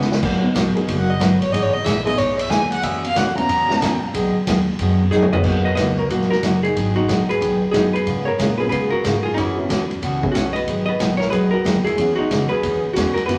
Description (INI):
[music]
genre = country, western swing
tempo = 184 BPM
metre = 4/4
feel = swing 64% on 8ths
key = B major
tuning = A4 = 440 Hz
[part]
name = honky-tonk upright piano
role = accompaniment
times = 0.0-13.4 s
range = A#2 to G#4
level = -29 LUFS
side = equal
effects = none
[part]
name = upright bass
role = bass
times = 0.0-13.4 s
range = F#1 to B2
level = -29 LUFS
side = equal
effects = none
[part]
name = swinging big-band drum kit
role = drums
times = 0.0-13.4 s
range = crash cymbal, hi-hat, kick drum, ride cymbal, snare drum, toms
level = -26 LUFS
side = equal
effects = none
[part]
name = picked steel-string acoustic guitar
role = accompaniment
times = 0.2-13.4 s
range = B2 to G#4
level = -24 LUFS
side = equal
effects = none
[part]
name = rich fiddle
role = second line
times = 1.0-4.1 s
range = B4 to A#5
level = -24 LUFS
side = equal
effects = none
[part]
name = archtop guitar, miked and amplified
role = melody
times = 5.1-13.4 s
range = C#4 to D#5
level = -23 LUFS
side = equal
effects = none
[sound]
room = wet large studio reverb, RT60 1.4 s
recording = vinyl crackle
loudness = -19 LUFS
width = mono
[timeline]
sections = 0.0-5.4 A section; 5.4-13.4 B section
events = drum fill 0.0, 5.1-5.4; fiddle solo 0.0-5.4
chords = 0.2 Bmaj7; 1.5 Emaj7; 2.8 F#7sus4; 4.1 B6; 5.4 Bmaj7; 6.7 G#m7; 8.1 C#7; 9.4 F#7sus4; 10.7 G#m7; 12.0 E69